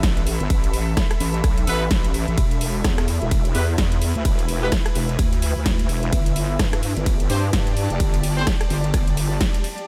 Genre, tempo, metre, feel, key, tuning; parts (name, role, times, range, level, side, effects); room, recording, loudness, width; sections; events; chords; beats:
bass house; 128 BPM; 4/4; swing 58% on 16ths; A4 = 443 Hz
wobble bass; bass; 0.0-9.4 s; E1 to G2; -25 LUFS; equal; chorus, tube saturation, sidechain pumping
big-room dance drum kit; drums; 0.0-9.9 s; hi-hat, ride cymbal, rim click, snare drum; -30 LUFS; equal
electronic kick drum; drums; 0.0-9.5 s; -23 LUFS; equal
granular cloud pad; texture; 0.0-9.9 s; E4 to B5; -33 LUFS; equal; built-in reverb, sidechain pumping
clear horn section; stabs; 1.7-8.4 s; B3 to C5; -31 LUFS; equal; sidechain pumping, delay
digital ambience; -21 LUFS; mono
0.0-9.9 A section
drop 0.0-9.9; band accent 9.4
0.0 Asus2; 2.4 E5; 6.1 G5
0.03 | 0.50 0.97 1.44 1.91 | 2.38 2.84 3.31 3.78 | 4.25 4.72 5.19 5.66 | 6.13 6.59 7.06 7.53 | 8.00 8.47 8.94 9.41